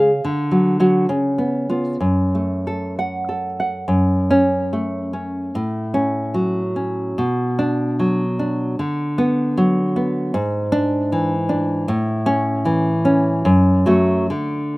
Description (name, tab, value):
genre	romantic piece for solo classical guitar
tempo	61-78 BPM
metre	2/4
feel	rubato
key	F# minor, A major from 10.3 s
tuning	A4 = 440 Hz
part	nylon-string guitar	solo	0.0-14.8 s	F#2 to F#5	-17 LUFS	equal	none
room	little or no reverb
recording	recorded outdoors, with no room sound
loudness	-17 LUFS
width	side -22 dB against mid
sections	0.0-3.9 A section; 3.9-14.8 B section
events	none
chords	0.2 D; 1.1 C#7; 2.0 F#m; 5.5 F#m/A; 7.2 Bm; 8.8 Bm/D; 10.3 E7/G#; 11.9 A; 13.4 F#m